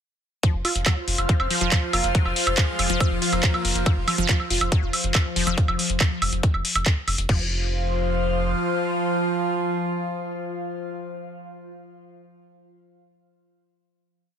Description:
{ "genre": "psychedelic trance", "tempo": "140 BPM", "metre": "4/4", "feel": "straight", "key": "unclear", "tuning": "A4 = 440 Hz", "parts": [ { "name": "evolving wavetable pad", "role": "sustained chords", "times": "1.1-10.8 s", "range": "F3 to F4", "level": "-29 LUFS", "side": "equal", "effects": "phaser, built-in reverb, sidechain pumping" }, { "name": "wide unison pluck", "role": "riff", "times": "0.4-7.5 s", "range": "F3 to F4", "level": "-29 LUFS", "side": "moving between left 4 dB and right 2 dB", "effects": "auto-pan, sidechain pumping, tape echo" }, { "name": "drum and bass drum kit", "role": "drums", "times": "0.4-7.4 s", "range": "crash cymbal, handclaps, hi-hat, woodblock", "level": "-24 LUFS", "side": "right 1 dB", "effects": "none" }, { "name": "electronic kick drum", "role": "drums", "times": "0.4-7.4 s", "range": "none", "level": "-20 LUFS", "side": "equal", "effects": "none" }, { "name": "airy breathy pad", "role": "texture", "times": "0.4-11.0 s", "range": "F4 to F5", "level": "-29 LUFS", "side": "equal", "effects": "chorus, phaser, sidechain pumping" }, { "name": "round analog bass", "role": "bass", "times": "0.5-8.5 s", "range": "F1", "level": "-27 LUFS", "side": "equal", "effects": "tube saturation" }, { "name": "metallic wobble bass", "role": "second line", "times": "1.3-3.9 s", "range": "Ab3 to C4", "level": "-39 LUFS", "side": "left 5 dB", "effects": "none" } ], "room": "light reverb", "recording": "dense, heavily limited modern master", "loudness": "-20 LUFS", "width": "side -8 dB against mid", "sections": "0.4-7.3 drop; 7.3-10.7 final chord", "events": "drop 0.4-7.3", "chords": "0.4 F5", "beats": "| 0.43 0.86 1.29 1.72 | 2.15 2.58 3.00 3.43 | 3.86 4.29 4.72 5.15 | 5.58 6.00 6.43 6.86 | 7.29 7.72 8.15 8.58 | 9.01 9.43 9.86 10.29" }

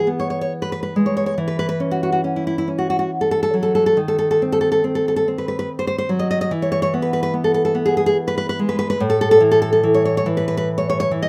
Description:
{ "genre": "romantic piece for solo classical guitar", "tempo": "71 BPM", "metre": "3/4", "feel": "rubato", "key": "E major", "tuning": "A4 = 440 Hz", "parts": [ { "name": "nylon-string guitar", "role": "solo", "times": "0.0-11.3 s", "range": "A2 to D#5", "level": "-19 LUFS", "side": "equal", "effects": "none" } ], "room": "light reverb", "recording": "none", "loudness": "-19 LUFS", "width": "mono", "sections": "0.0-11.3 A section", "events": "none", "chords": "0.0 E; 1.4 F#5/E; 4.0 D#dim7; 6.5 E; 9.0 A5", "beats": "0.51 | 1.37 2.23 3.10 | 3.97 4.83 5.68 | 6.51 7.33 8.16 | 9.00 9.84 10.68" }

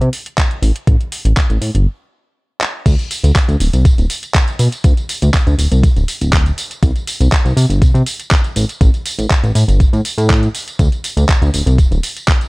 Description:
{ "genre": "nu-disco, nu disco", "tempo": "121 BPM", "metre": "4/4", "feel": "straight", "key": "unclear", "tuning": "A4 = 436 Hz", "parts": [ { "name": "chorused synth bass", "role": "bass", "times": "0.0-12.0 s", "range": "D1 to C3", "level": "-12 LUFS", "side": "equal", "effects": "none" }, { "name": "pop drum kit", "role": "drums", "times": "0.0-12.5 s", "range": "crash cymbal, handclaps, hi-hat, tambourine", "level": "-21 LUFS", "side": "right 1 dB", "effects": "studio reverb" }, { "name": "electronic kick drum", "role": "drums", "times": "0.4-12.4 s", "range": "none", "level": "-12 LUFS", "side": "equal", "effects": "overdrive, studio reverb" } ], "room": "little or no reverb", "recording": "none", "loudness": "-12 LUFS", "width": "side -25 dB against mid", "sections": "0.0-2.9 A section; 2.9-12.5 B section", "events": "stop 1.9-2.9; drum fill 2.6; drop 2.9-12.5", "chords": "none", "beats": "0.38 | 0.88 1.37 1.87 2.36 | 2.86 3.35 3.85 4.35 | 4.84 5.34 5.83 6.33 | 6.83 7.32 7.82 8.31 | 8.81 9.30 9.80 10.30 | 10.79 11.29 11.79 12.28" }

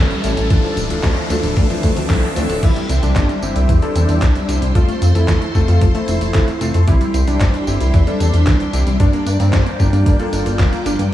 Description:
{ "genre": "italo disco", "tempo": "113 BPM", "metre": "4/4", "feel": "straight", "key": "G dorian", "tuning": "A4 = 440 Hz", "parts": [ { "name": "phased string machine", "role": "sustained chords", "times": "0.0-11.1 s", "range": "F3 to D6", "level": "-27 LUFS", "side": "equal", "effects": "ensemble chorus, phaser" }, { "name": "warm electric grand piano", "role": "stabs", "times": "0.0-11.1 s", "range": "F3 to C5", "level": "-24 LUFS", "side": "left 3 dB", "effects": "tape echo" }, { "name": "chorused synth bass", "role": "bass", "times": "0.0-11.1 s", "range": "D1 to G2", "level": "-17 LUFS", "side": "equal", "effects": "none" }, { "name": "riser and swell", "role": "sound effects", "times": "0.0-2.6 s", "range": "none", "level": "-28 LUFS", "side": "left 1 dB", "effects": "none" }, { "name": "analog pluck", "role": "arpeggios", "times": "0.1-11.0 s", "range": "E3 to D4", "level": "-26 LUFS", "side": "equal", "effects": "chorus, tape echo" }, { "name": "detuned 8-bit digital drum machine", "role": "drums", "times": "0.1-11.1 s", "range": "crash cymbal, handclaps, hi-hat, snare drum, tambourine", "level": "-26 LUFS", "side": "equal", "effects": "studio reverb" }, { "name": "electronic kick drum", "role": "drums", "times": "0.5-10.7 s", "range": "none", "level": "-16 LUFS", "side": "equal", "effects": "studio reverb" }, { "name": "wide unison lead", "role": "melody", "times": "2.6-11.0 s", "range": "C4 to F4", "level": "-23 LUFS", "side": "right 2 dB", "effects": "tape echo" } ], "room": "moderate plate reverb, RT60 2.1 s", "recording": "dreamy mix soaked in reverb, small room ambience", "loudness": "-13 LUFS", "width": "side -13 dB against mid", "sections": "0.0-2.6 A section; 2.6-11.1 B section", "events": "riser 0.0-2.6; filter sweep on synth arpeggio sound 0.0-2.6; swell 1.6-2.6", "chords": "0.0 A7; 0.5 Dmadd9; 2.6 C; 4.8 F; 6.9 C; 9.0 Gm", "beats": "| 0.51 1.04 1.57 2.10 | 2.63 3.16 3.69 4.22 | 4.75 5.28 5.82 6.35 | 6.88 7.41 7.94 8.47 | 9.00 9.53 10.06 10.59" }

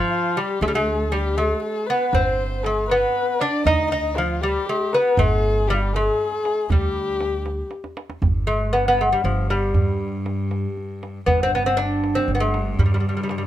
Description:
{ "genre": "Persian modal ensemble", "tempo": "79 BPM (dotted quarters)", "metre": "6/8", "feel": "straight", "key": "G dastgah homayun", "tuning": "A4 = 440 Hz", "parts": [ { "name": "lute", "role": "melody", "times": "0.0-13.4 s", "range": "F3 to Eb4", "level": "-22 LUFS", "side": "equal", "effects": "plate reverb" }, { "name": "dark kamancheh", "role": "second line", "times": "0.0-7.7 s", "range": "F4 to Eb5", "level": "-25 LUFS", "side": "left 3 dB", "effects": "none" }, { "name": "upright bass", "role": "bass", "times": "0.6-13.5 s", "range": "G1 to G2", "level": "-24 LUFS", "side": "equal", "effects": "none" }, { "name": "tombak", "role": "percussion", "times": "2.1-13.4 s", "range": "none", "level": "-24 LUFS", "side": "right 2 dB", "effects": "none" }, { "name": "clear cello", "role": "drone", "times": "8.2-13.5 s", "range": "G2", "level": "-29 LUFS", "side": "left 1 dB", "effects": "none" } ], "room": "light reverb", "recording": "close, detailed microphones", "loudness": "-19 LUFS", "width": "side -12 dB against mid", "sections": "0.0-8.2 A section; 8.2-13.5 B section", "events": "drum fill 7.7-8.2", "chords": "none", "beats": "| 0.62 1.38 | 2.14 2.90 | 3.66 4.42 | 5.18 5.94 | 6.70 7.46 | 8.22 8.98 | 9.75 10.51 | 11.27 12.03 | 12.79" }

